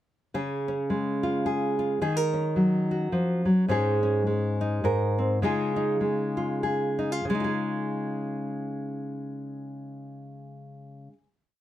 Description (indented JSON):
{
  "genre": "folk, solo fingerstyle acoustic guitar",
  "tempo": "93-107 BPM",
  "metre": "3/4",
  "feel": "swing 59% on 8ths",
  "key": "Db major",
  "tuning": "A4 = 440 Hz",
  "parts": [
    { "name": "nylon-string guitar", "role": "solo", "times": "0.3-11.3 s", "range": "Ab2 to Bb4", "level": "-25 LUFS", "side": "equal", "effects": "none" }
  ],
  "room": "light reverb",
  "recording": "close, detailed microphones",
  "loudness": "-24 LUFS",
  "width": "side -12 dB against mid",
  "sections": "0.3-7.2 A section; 7.2-11.1 final chord",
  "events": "slowing down 3.7-7.2",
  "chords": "0.3 Db; 2.0 Ebm7; 3.7 Absus4; 4.8 Abadd9; 5.4 Dbadd9",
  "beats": "| 0.34 0.89 1.45 | 2.01 2.57 3.13 | 3.69 4.25 4.82 | 5.40 6.00 6.61 | 7.24 7.89 8.53 | 9.18 9.82 10.47"
}